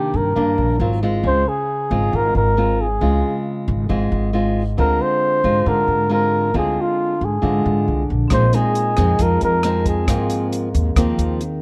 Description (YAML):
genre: bossa nova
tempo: 136 BPM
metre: 4/4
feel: straight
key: unclear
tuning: A4 = 440 Hz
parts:
  - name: breathy flugelhorn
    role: melody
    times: 0.0-10.5 s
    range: F4 to C5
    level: -22 LUFS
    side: equal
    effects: none
  - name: nylon-string guitar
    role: accompaniment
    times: 0.0-11.6 s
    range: G2 to F4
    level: -24 LUFS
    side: equal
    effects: none
  - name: upright bass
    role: bass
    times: 0.1-11.6 s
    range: Ab1 to Ab2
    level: -23 LUFS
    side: equal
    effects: none
  - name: vibraphone with medium hard mallets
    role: accompaniment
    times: 8.3-11.6 s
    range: C4 to F5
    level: -31 LUFS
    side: equal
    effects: none
  - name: compact cocktail drum kit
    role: drums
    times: 8.3-11.5 s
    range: hi-hat, kick drum, rim click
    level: -26 LUFS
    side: equal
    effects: none
room: little or no reverb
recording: dark, warm production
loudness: -18 LUFS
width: mono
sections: 0.0-11.6 A section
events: none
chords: 0.0 Cm9; 0.8 Ab13; 1.2 Dbmaj7; 4.8 Dm7b5; 8.3 Bb9sus4; 10.1 Ab69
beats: 0.35 0.80 | 1.24 1.68 2.12 2.56 | 3.01 3.45 3.89 4.33 | 4.78 5.22 5.66 6.10 | 6.54 6.99 7.43 7.87 | 8.31 8.76 9.20 9.64 | 10.08 10.52 10.96 11.40